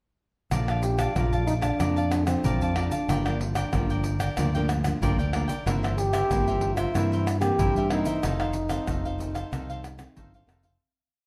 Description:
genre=samba and choro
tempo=93 BPM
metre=4/4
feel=straight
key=Bb major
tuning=A4 = 440 Hz
part: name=cavaquinho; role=accompaniment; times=0.5-10.8 s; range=Eb4 to A5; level=-36 LUFS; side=equal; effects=none
part: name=nylon-string guitar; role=accompaniment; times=0.5-10.8 s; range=F2 to D4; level=-35 LUFS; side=equal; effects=none
part: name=overdriven fingered electric bass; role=bass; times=0.5-10.8 s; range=F1 to G2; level=-30 LUFS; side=equal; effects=none
part: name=egg shaker, surdo, pandeiro and tamborim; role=percussion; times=0.5-10.8 s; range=none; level=-33 LUFS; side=equal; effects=none
part: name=mellow trombone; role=melody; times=0.8-10.5 s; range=C4 to G4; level=-31 LUFS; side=equal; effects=none
room=light reverb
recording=close, detailed microphones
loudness=-26 LUFS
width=mono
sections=0.5-10.8 A section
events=fade-out 8.2-10.8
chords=0.5 Bbmaj7; 3.1 Gm7; 5.7 C7/G; 8.2 F7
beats=| 0.52 1.16 1.80 2.45 | 3.09 3.73 4.38 5.02 | 5.67 6.31 6.95 7.59 | 8.23 8.88 9.52 10.16

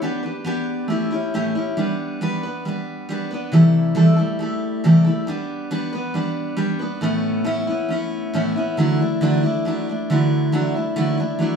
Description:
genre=rock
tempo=137 BPM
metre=4/4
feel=straight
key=D major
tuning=A4 = 440 Hz
part: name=picked steel-string acoustic guitar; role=solo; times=0.0-11.6 s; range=A2 to B4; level=-18 LUFS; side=equal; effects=none
room=moderate studio ambience, RT60 0.5 s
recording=studio reverb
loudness=-18 LUFS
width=side -6 dB against mid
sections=0.0-1.8 A section; 1.8-8.8 B section; 8.8-11.6 C section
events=none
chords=0.0 G/B; 0.9 A7; 1.8 G; 3.5 C6; 5.3 G; 7.0 Aadd9; 8.8 Dadd9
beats=| 0.02 0.46 0.90 1.33 | 1.77 2.21 2.65 3.08 | 3.52 3.96 4.40 4.84 | 5.28 5.71 6.15 6.59 | 7.03 7.46 7.90 8.34 | 8.78 9.21 9.65 10.09 | 10.52 10.96 11.40

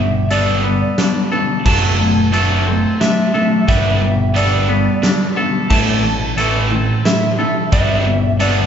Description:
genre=post-rock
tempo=89 BPM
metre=3/4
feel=straight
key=unclear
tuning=A4 = 437 Hz
part: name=electric slide guitar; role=melody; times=0.0-8.7 s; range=D5 to A5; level=-22 LUFS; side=right 1 dB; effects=none
part: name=twangy electric guitar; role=arpeggios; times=0.0-8.7 s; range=A2 to A4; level=-22 LUFS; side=equal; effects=none
part: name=distorted electric guitar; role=riff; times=0.0-8.7 s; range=A2 to D4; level=-17 LUFS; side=equal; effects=overdrive
part: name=picked electric bass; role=bass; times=0.0-8.7 s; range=F#1 to A1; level=-18 LUFS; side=left 1 dB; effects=none
part: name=huge arena drum kit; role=drums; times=0.3-8.6 s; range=crash cymbal, hi-hat, kick drum, snare drum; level=-20 LUFS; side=equal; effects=none
room=wet large studio reverb, RT60 1.3 s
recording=band playing live in one room, nothing above 7.7 kHz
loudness=-13 LUFS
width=side -8 dB against mid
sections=0.0-8.7 A section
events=build-up 0.0-8.7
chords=0.0 Gadd9; 1.7 D7/F#; 3.7 Gadd9; 5.7 Am; 7.7 Gadd9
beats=0.30 0.98 | 1.66 2.33 3.01 | 3.68 4.36 5.03 | 5.71 6.38 7.06 | 7.73 8.41

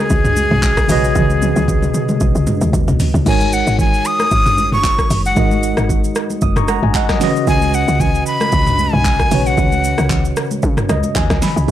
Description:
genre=amapiano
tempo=114 BPM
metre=4/4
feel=swing 55% on 16ths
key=unclear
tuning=A4 = 440 Hz
part: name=breathy bright jazz flute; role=melody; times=0.0-10.3 s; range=G#4 to D#6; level=-18 LUFS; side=equal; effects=none
part: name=tine electric piano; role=accompaniment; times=0.0-11.7 s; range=C#3 to D#6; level=-20 LUFS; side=right 1 dB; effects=medium stereo tremolo
part: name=woody log drum bass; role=bass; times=0.1-11.7 s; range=F#1 to C#3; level=-18 LUFS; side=equal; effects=none
part: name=deep house drum kit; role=drums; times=0.1-11.7 s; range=crash cymbal, handclaps, hi-hat, kick drum, rim click, shaker, snare drum, toms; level=-18 LUFS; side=equal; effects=overdrive
part: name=congas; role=percussion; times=0.4-11.7 s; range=none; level=-24 LUFS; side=equal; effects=none
room=little or no reverb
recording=dry, gritty hardware recording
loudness=-13 LUFS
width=side -12 dB against mid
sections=0.0-3.3 A section; 3.3-11.7 B section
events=drop 0.0-3.3; drum fill 1.2-3.3; tine electric piano fill 10.6-11.7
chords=0.0 C#9sus4; 3.3 G#9sus4; 7.2 C#9sus4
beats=0.10 0.63 | 1.16 1.68 2.21 2.73 | 3.26 3.79 4.31 4.84 | 5.37 5.89 6.42 6.95 | 7.47 8.00 8.53 9.05 | 9.58 10.10 10.63 11.16 | 11.68

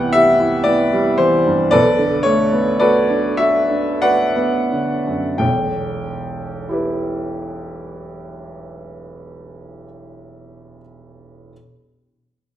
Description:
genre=classical, impressionist solo piano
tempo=42-57 BPM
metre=3/4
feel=rubato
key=E minor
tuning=A4 = 440 Hz
part: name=warm baby grand piano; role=solo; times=0.0-11.5 s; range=E1 to G5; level=-16 LUFS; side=equal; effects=none
room=moderate recital hall reverb, RT60 1.4 s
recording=none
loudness=-14 LUFS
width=side -12 dB against mid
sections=0.0-5.4 A section; 5.4-9.3 B section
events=slowing down 0.0-5.4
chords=0.0 Cmaj7; 1.7 Bm7; 5.4 Em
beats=0.67 | 1.73 2.81 4.04 | 5.41 6.70 8.03

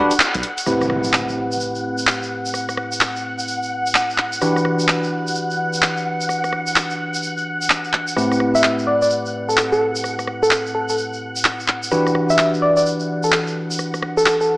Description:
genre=UK garage, two-step garage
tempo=128 BPM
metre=4/4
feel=swing 64% on 16ths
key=A dorian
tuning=A4 = 439 Hz
part: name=soft string machine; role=sustained chords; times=0.0-14.6 s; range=F#5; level=-26 LUFS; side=equal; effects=phaser, ensemble chorus
part: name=bell-like tine electric piano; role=stabs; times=0.0-14.6 s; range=A2 to B4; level=-22 LUFS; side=equal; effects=lush chorus, low-pass filter, tape echo
part: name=punchy analog drum machine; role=drums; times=0.1-14.4 s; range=handclaps, hi-hat, rim click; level=-18 LUFS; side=equal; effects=overdrive, small room ambience
part: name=tube shaker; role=percussion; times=0.1-14.5 s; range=none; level=-28 LUFS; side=right 1 dB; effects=none
part: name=impact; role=sound effects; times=0.7-2.5 s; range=none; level=-31 LUFS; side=equal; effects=none
part: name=soft struck synth lead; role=melody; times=8.5-14.6 s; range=A4 to E5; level=-18 LUFS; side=equal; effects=chorus, tape echo
room=moderate plate reverb, RT60 1.2 s, digital ambience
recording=small speaker sound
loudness=-17 LUFS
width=side -21 dB against mid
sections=0.7-14.6 A section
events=band accent 0.2; impact 0.7-2.5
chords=0.0 Em9 (rootless); 0.7 Am9; 4.4 Em9; 8.2 Am9; 11.9 Em9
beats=0.20 | 0.67 1.14 1.60 2.07 | 2.54 3.01 3.48 3.95 | 4.42 4.88 5.35 5.82 | 6.29 6.76 7.23 7.70 | 8.17 8.63 9.10 9.57 | 10.04 10.51 10.98 11.45 | 11.92 12.38 12.85 13.32 | 13.79 14.26

